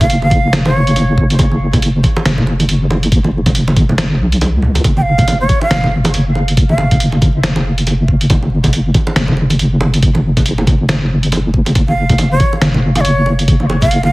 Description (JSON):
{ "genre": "deep dubstep", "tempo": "139 BPM", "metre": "4/4", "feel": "swing 59% on 16ths, half-time", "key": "unclear", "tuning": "A4 = 440 Hz", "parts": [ { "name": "bright shakuhachi", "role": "melody", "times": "0.0-1.3, 5.0-7.0, 11.9-14.1 s", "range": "C#5 to G5", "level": "-19 LUFS", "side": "right 1 dB", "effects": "dub echo" }, { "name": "deep soft wobble bass", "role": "bass", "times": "0.0-14.1 s", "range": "F#1 to C#2", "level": "-13 LUFS", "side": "equal", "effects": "chorus" }, { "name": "electronic kick drum", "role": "drums", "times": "0.0-13.9 s", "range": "none", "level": "-14 LUFS", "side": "equal", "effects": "none" }, { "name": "trip hop sampler-style drum kit", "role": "drums", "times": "0.0-14.0 s", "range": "hi-hat, snare drum", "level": "-18 LUFS", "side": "equal", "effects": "none" }, { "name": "congas", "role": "percussion", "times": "0.0-14.1 s", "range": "none", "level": "-19 LUFS", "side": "right 1 dB", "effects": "dub echo" } ], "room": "light reverb", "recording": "heavily compressed radio sound, vinyl crackle", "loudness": "-10 LUFS", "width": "side -21 dB against mid", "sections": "0.0-14.1 A section", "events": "kick drops out 4.0-4.8", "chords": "0.0 F#5", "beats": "0.10 0.53 0.96 | 1.39 1.82 2.25 2.69 | 3.12 3.55 3.98 4.41 | 4.84 5.28 5.71 6.14 | 6.57 7.00 7.43 7.87 | 8.30 8.73 9.16 9.59 | 10.03 10.46 10.89 11.32 | 11.75 12.18 12.62 13.05 | 13.48 13.91" }